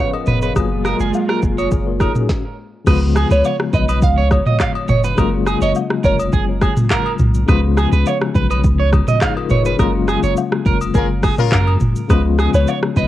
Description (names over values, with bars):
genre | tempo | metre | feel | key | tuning
afrobeats | 104 BPM | 4/4 | straight | F# major | A4 = 444 Hz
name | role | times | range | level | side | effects
tine electric piano | accompaniment | 0.0-13.1 s | C#3 to E#5 | -21 LUFS | left 6 dB | fast tremolo, cassette tape
lush unison pad | sustained chords | 0.0-2.3 s | A#2 to E#4 | -24 LUFS | right 2 dB | chorus, phaser, cassette tape
electric guitar at the edge of break-up | riff | 0.0-13.1 s | G#4 to E#5 | -23 LUFS | right 8 dB | cassette tape, analog delay
agogo bells and woodblock | percussion | 0.1-12.8 s | none | -28 LUFS | left 8 dB | none
punchy sub bass | bass | 0.3-13.1 s | E#1 to F#2 | -18 LUFS | equal | none
afro-pop drum kit | drums | 0.3-13.1 s | crash cymbal, handclaps, hi-hat, kick drum, rim click, shaker, snare drum, toms | -18 LUFS | equal | cassette tape
glassy wavetable pluck | melody | 3.3-6.2, 12.6-13.1 s | C#5 to E#5 | -21 LUFS | right 1 dB | chorus, cassette tape, analog delay
warm horn section | second line | 10.9-11.6 s | C#4 to A#4 | -22 LUFS | left 10 dB | cassette tape
room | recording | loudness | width
digital ambience | home recording on cassette | -14 LUFS | side -14 dB against mid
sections
0.0-2.9 A section; 2.9-13.1 B section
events
stop 2.3-2.9; band accent 9.8-12.1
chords
0.0 C#7; 0.6 F#maj9; 2.9 C#7; 5.2 F#maj9; 7.5 C#7; 9.8 F#maj9; 12.1 C#7